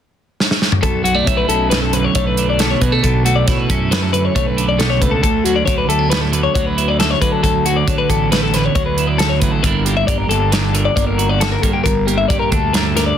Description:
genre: math rock and midwest emo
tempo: 136 BPM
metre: 5/4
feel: straight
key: unclear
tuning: A4 = 441 Hz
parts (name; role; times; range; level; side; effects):
- modern studio drum kit; drums; 0.4-13.1 s; hi-hat, kick drum, snare drum, toms; -19 LUFS; equal; none
- twelve-string electric guitar; accompaniment; 0.8-13.2 s; D2 to G4; -19 LUFS; right 6 dB; none
- twelve-string electric guitar; arpeggios; 0.8-13.2 s; F#4 to E5; -18 LUFS; left 7 dB; plate reverb
- fuzz fingered electric bass; bass; 0.8-13.1 s; G1 to D3; -20 LUFS; equal; overdrive
room: light reverb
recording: dense, heavily limited modern master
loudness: -13 LUFS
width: side -9 dB against mid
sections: 0.8-13.2 A section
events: drum fill 0.4-0.8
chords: 0.0 N.C.; 0.8 Bm9; 5.2 D69; 9.6 Gm6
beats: 0.39 | 0.83 1.27 1.71 2.15 2.59 | 3.03 3.47 3.91 4.35 4.79 | 5.23 5.67 6.11 6.55 6.99 | 7.43 7.87 8.31 8.75 9.19 | 9.64 10.08 10.52 10.96 11.41 | 11.85 12.29 12.74

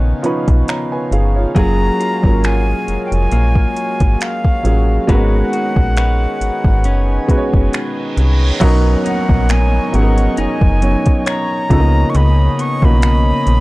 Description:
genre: contemporary R&B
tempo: 68 BPM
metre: 4/4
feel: swing 54% on 16ths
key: unclear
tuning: A4 = 440 Hz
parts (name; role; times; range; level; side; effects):
- warm grand piano; accompaniment; 0.0-13.6 s; E#3 to A#5; -19 LUFS; right 1 dB; none
- hand-pumped harmonium; sustained chords; 0.0-13.6 s; D#3 to D#5; -25 LUFS; right 1 dB; none
- direct-recorded clean electric guitar; arpeggios; 0.0-13.6 s; C#3 to C#5; -24 LUFS; left 3 dB; none
- slap-like FM bass; bass; 0.0-13.6 s; E#1 to C#2; -14 LUFS; equal; none
- smooth R&B drum kit; drums; 0.2-13.6 s; crash cymbal, finger snaps, hi-hat, kick drum; -15 LUFS; equal; overdrive
- breathy bright concert flute; melody; 1.6-13.6 s; E#5 to C#6; -22 LUFS; equal; none
- reverse cymbal and downlifter; sound effects; 7.7-13.6 s; none; -29 LUFS; equal; none
room: little or no reverb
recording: dry, gritty hardware recording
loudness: -12 LUFS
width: side -20 dB against mid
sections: 0.0-8.6 A section; 8.6-13.6 B section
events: reverse cymbal 7.7-8.6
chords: 0.0 C#13; 1.6 F#maj9; 5.1 G#m11; 8.6 Bmaj9; 11.7 C#13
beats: 0.67 | 1.56 2.44 3.32 4.20 | 5.08 5.97 6.85 7.73 | 8.62 9.50 10.38 11.26 | 12.14 13.03

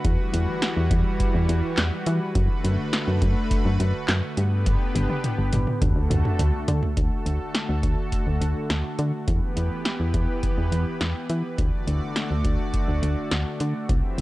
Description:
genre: synth-pop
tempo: 104 BPM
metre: 4/4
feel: straight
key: D major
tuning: A4 = 442 Hz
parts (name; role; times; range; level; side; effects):
- lush unison pad; sustained chords; 0.0-14.2 s; D3 to E5; -28 LUFS; equal; chorus
- solid FM bass; bass; 0.0-14.2 s; G1 to E3; -23 LUFS; equal; none
- electro analog drum machine; drums; 0.0-14.2 s; handclaps, hi-hat, kick drum, snare drum, toms; -25 LUFS; equal; none
room: little or no reverb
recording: dry, gritty hardware recording, cassette tape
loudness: -21 LUFS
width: side -18 dB against mid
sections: 0.0-7.0 A section; 7.0-14.2 B section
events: drum fill 4.7-7.0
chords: 0.0 Emadd9; 2.4 D6/F#; 4.4 G; 5.8 D; 9.3 Em; 11.6 D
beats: | 0.05 0.62 1.20 1.78 | 2.35 2.93 3.51 4.08 | 4.66 5.24 5.82 6.39 | 6.97 7.55 8.12 8.70 | 9.28 9.85 10.43 11.01 | 11.59 12.16 12.74 13.32 | 13.89

